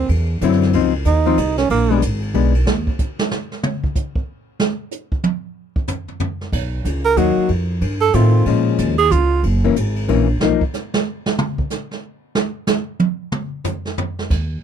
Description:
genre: jazz, small-group swing and bop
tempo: 186 BPM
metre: 3/4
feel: swing 63% on 8ths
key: unclear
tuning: A4 = 440 Hz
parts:
  - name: warm tenor saxophone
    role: second line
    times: 0.0-2.0, 7.0-9.4 s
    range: Bb3 to A#4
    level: -17 LUFS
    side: right 8 dB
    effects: none
  - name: upright bass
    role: bass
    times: 0.0-2.9, 6.5-10.5, 14.3-14.6 s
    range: Gb1 to Bb2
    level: -18 LUFS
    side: right 1 dB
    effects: none
  - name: jazz brush drum kit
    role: drums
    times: 0.1-14.6 s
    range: brushed snare drum, crash cymbal, hi-hat, kick drum, ride cymbal, snare drum, toms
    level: -22 LUFS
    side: right 2 dB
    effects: none
  - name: archtop guitar, miked and amplified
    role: accompaniment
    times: 0.4-2.5, 7.2-10.6 s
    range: D3 to E4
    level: -17 LUFS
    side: left 13 dB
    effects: none
room: light reverb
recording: none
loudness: -16 LUFS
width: side -8 dB against mid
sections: 0.0-6.5 A section; 6.5-14.3 A section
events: tenor saxophone solo 0.0-14.3; drum solo 2.7-6.5, 10.4-14.3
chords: 0.0 D9; 0.7 Dbmaj9; 1.7 Bb7b9; 2.7 N.C.; 6.5 Bmaj7; 7.5 F7; 8.5 Bbm7; 9.4 Gb7; 10.4 Bmaj7#11; 11.4 N.C.

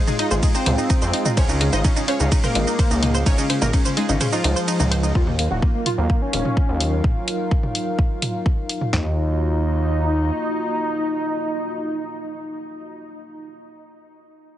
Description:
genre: melodic techno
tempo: 127 BPM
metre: 4/4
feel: straight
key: Eb dorian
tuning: A4 = 440 Hz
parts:
  - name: dark analog pad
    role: sustained chords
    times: 0.0-13.5 s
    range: Gb3 to F5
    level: -28 LUFS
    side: equal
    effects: chorus, sidechain pumping
  - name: wide unison lead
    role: melody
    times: 0.1-13.5 s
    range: Db3 to Gb4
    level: -25 LUFS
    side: equal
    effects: wide subtle chorus, sidechain pumping, tape echo
  - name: glassy wavetable pluck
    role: second line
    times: 0.1-5.1 s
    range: Db4 to Eb5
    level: -30 LUFS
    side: left 2 dB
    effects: chorus, cassette tape, sidechain pumping, tape echo
  - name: warbly dusty pluck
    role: arpeggios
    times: 0.1-5.1 s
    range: Eb4 to C6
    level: -28 LUFS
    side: right 1 dB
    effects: chorus, sidechain pumping, tape echo
  - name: house drum kit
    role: drums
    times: 0.1-8.9 s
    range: hi-hat, ride cymbal, shaker, toms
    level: -25 LUFS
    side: right 1 dB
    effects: studio reverb
  - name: gritty driven synth bass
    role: bass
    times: 0.3-10.3 s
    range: Eb1 to F2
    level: -21 LUFS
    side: equal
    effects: sidechain pumping
  - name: house drum kit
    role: drums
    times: 0.4-9.0 s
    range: kick drum, snare drum, toms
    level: -19 LUFS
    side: equal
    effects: studio reverb
room: digital ambience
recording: heavily compressed radio sound, multiband compression, nothing above 10.3 kHz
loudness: -18 LUFS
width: side -12 dB against mid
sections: 0.0-5.2 A section; 5.2-8.9 B section; 8.9-12.7 C section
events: drop 0.0-5.2; kick drops out 4.2-5.2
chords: 0.0 Db; 5.2 Ebmadd9

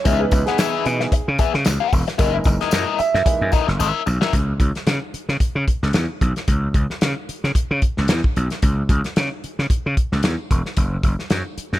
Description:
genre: funk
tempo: 112 BPM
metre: 4/4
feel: swing 56% on 16ths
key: unclear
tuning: A4 = 440 Hz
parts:
  - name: clear upright piano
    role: stabs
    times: 0.0-3.5 s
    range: E3 to E5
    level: -23 LUFS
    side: right 4 dB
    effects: none
  - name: crunchy overdriven guitar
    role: accompaniment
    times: 0.1-4.3 s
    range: E4 to F#5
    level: -23 LUFS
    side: left 10 dB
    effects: wah
  - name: gritty slap bass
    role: bass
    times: 0.1-11.8 s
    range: E1 to C#3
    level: -21 LUFS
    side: equal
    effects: overdrive
  - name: warm soul drum kit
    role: drums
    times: 0.1-11.8 s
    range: hi-hat, kick drum, snare drum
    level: -20 LUFS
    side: equal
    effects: none
  - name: tambourine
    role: percussion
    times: 0.1-4.2 s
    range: none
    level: -36 LUFS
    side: left 3 dB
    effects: none
room: studio ambience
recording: none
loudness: -17 LUFS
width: side -14 dB against mid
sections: 0.0-4.3 A section; 4.3-11.8 B section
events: upright piano solo 0.0-4.3; drum fill 3.8-4.3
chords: 0.0 C#m7; 2.2 F#13; 4.3 N.C.

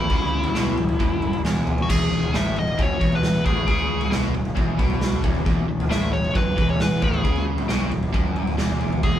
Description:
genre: indie rock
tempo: 134 BPM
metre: 4/4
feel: straight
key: E major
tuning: A4 = 440 Hz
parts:
  - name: nasal lead guitar with a parked wah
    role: melody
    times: 0.0-9.2 s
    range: E4 to E5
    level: -26 LUFS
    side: left 2 dB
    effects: overdrive
  - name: overdriven electric guitar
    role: riff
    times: 0.0-9.2 s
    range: E2 to C#3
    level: -25 LUFS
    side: equal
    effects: none
  - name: growling picked electric bass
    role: bass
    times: 0.0-9.2 s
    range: E1 to C#2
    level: -28 LUFS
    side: equal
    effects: overdrive
  - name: raw garage drum kit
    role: drums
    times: 0.1-9.1 s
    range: crash cymbal, kick drum, snare drum, toms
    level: -22 LUFS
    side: equal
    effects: none
room: light reverb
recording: band playing live in one room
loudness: -19 LUFS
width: side -11 dB against mid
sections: 0.0-1.9 A section; 1.9-9.2 A section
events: none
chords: 0.0 E5; 1.9 E

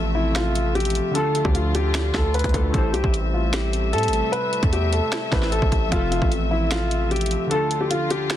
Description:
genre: hip hop, trap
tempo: 151 BPM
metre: 4/4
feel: half-time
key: A minor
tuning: A4 = 437 Hz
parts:
  - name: warbly lo-fi synth keys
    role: accompaniment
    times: 0.0-8.4 s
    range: D3 to E5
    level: -29 LUFS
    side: left 1 dB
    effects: chorus, low-pass filter
  - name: dark chamber string section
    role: sustained chords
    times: 0.0-8.4 s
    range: C3 to E5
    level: -29 LUFS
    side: left 2 dB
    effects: none
  - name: distorted 808-style bass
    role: bass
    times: 0.0-7.4 s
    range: F1 to A2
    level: -23 LUFS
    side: equal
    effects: distortion
  - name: dark grand piano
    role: melody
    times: 0.1-8.4 s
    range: E4 to B4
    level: -24 LUFS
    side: left 1 dB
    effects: low-pass filter, ping-pong delay
  - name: trap drum kit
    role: drums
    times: 0.4-8.4 s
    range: finger snaps, hi-hat, kick drum, snare drum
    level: -24 LUFS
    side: equal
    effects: overdrive
room: light reverb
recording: dense, heavily limited modern master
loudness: -19 LUFS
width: side -12 dB against mid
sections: 0.0-8.4 A section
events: kick muted 7.5-8.4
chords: 0.0 Fmaj7; 1.1 Dm; 2.7 Am7; 5.9 Fmaj7; 7.5 Dm

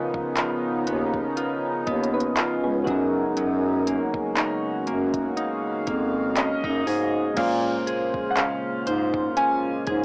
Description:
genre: contemporary R&B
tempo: 60 BPM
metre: 4/4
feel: swing 54% on 16ths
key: Bb minor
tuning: A4 = 440 Hz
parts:
  - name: soft electric-piano-like synth keys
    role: accompaniment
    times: 0.0-10.0 s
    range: Bb2 to Eb5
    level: -32 LUFS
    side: equal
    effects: chorus, cassette tape
  - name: chorused pulse-width pad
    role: sustained chords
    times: 0.0-10.0 s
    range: Db3 to F5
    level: -32 LUFS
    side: equal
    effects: cassette tape
  - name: direct-recorded clean electric guitar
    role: arpeggios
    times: 0.0-10.0 s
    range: Db3 to C5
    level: -33 LUFS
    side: equal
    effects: spring reverb, cassette tape
  - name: breathy bass clarinet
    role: bass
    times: 0.0-10.0 s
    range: Db2 to Bb2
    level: -28 LUFS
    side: equal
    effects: none
  - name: smooth R&B drum kit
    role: drums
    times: 0.1-10.0 s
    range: crash cymbal, handclaps, hi-hat, kick drum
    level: -31 LUFS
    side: equal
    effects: cassette tape
  - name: warm baby grand piano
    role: melody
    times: 6.4-10.0 s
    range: Eb5 to Ab5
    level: -30 LUFS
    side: equal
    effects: cassette tape
room: light reverb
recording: home recording on cassette, small speaker sound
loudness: -25 LUFS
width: mono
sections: 0.0-7.4 A section; 7.4-10.0 B section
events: none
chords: 0.0 Db13; 2.9 Gb69; 7.4 Bbm9

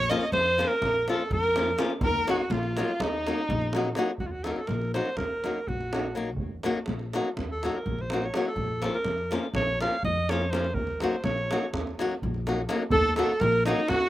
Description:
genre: balkan folk, Balkan wedding band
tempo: 247 BPM (eighths)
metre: 9/8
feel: straight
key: Eb dorian sharp4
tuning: A4 = 438 Hz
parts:
  - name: bright alto saxophone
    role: melody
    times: 0.0-14.1 s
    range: Eb4 to F5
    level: -28 LUFS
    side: right 1 dB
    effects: none
  - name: rich violin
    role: second line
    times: 0.0-4.0, 12.9-14.1 s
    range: Eb4 to Eb5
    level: -31 LUFS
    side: equal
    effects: slapback echo
  - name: upright bass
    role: bass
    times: 0.0-14.1 s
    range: Bb1 to F2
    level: -32 LUFS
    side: equal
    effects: none
  - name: flamenco guitar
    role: accompaniment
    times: 0.1-13.8 s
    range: Eb3 to Gb4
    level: -30 LUFS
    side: left 3 dB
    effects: none
  - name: davul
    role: percussion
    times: 0.1-14.1 s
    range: none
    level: -33 LUFS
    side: right 2 dB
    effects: slapback echo
room: little or no reverb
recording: recorded outdoors, with no room sound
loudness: -25 LUFS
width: side -14 dB against mid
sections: 0.0-4.2 A section; 4.2-12.9 B section; 12.9-14.1 C section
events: alto saxophone solo 4.2-12.9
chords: 0.0 Bbm; 2.0 Ebm; 8.6 Bbm; 10.7 Ebm

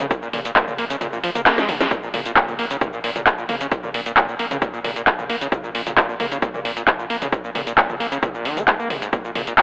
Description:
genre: driving peak-time techno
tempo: 133 BPM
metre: 4/4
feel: straight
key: Bb minor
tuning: A4 = 440 Hz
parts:
  - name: overdriven acid bass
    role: riff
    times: 0.0-9.6 s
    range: Bb1 to Bb3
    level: -25 LUFS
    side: equal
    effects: distortion, wide subtle chorus, sidechain pumping, tape echo
  - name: techno drum kit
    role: drums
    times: 0.0-9.6 s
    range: handclaps, hi-hat, shaker, snare drum, toms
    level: -19 LUFS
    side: equal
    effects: sidechain pumping on hats, sidechain pumping on perc, sidechain pumping on toms
  - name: electronic kick drum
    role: drums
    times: 0.1-9.6 s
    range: none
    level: -22 LUFS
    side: equal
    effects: none
  - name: saturated sub bass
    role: bass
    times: 0.2-9.5 s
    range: Bb1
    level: -49 LUFS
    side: left 1 dB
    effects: none
room: moderate huge ambient reverb, RT60 4.6 s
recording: telephone sound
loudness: -18 LUFS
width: side -25 dB against mid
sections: 0.0-9.6 A section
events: kick drops out 1.0-1.9; drum fill 1.5-1.9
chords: 0.0 Bb5

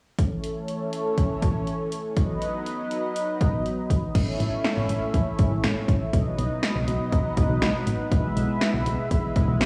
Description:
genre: synth-pop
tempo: 121 BPM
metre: 4/4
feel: straight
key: unclear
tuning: A4 = 440 Hz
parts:
  - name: warm analog pad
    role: sustained chords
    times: 0.2-9.7 s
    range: E3 to E5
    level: -30 LUFS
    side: equal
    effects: chorus
  - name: punchy analog drum machine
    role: drums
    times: 0.2-9.7 s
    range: crash cymbal, hi-hat, kick drum, snare drum, toms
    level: -28 LUFS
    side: equal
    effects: none
  - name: solid FM bass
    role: bass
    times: 4.2-9.7 s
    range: A1 to B1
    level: -27 LUFS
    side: equal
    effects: none
room: moderate lush hall reverb, RT60 2.0 s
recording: worn, warbling old tape, cassette tape, warbly pitch drift, small room ambience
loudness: -25 LUFS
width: mono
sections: 0.2-4.2 A section; 4.2-9.7 B section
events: none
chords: 0.2 A; 2.2 B; 4.2 A; 6.1 B; 8.1 E/B

